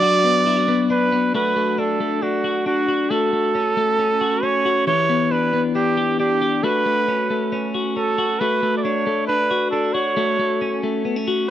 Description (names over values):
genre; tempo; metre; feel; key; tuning
indie pop; 136 BPM; 4/4; straight; unclear; A4 = 440 Hz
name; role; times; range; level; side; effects
clear trumpet; melody; 0.0-10.8 s; F#4 to D5; -20 LUFS; right 3 dB; tape echo
twelve-string electric guitar; arpeggios; 0.0-11.5 s; E3 to G4; -21 LUFS; left 3 dB; none
room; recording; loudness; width
little or no reverb; dry, close 1970s-style studio recording; -17 LUFS; side -11 dB against mid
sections
0.0-1.3 A section; 1.3-11.5 B section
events
none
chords
0.0 Bm; 1.3 Bm7; 3.1 A6; 4.9 Em7; 6.6 A69; 8.4 Bm7; 10.2 A6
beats
0.02 0.46 0.90 | 1.34 1.78 2.22 2.66 | 3.11 3.55 3.99 4.43 | 4.87 5.31 5.75 6.20 | 6.64 7.08 7.52 7.96 | 8.40 8.84 9.28 9.72 | 10.16 10.61 11.05 11.49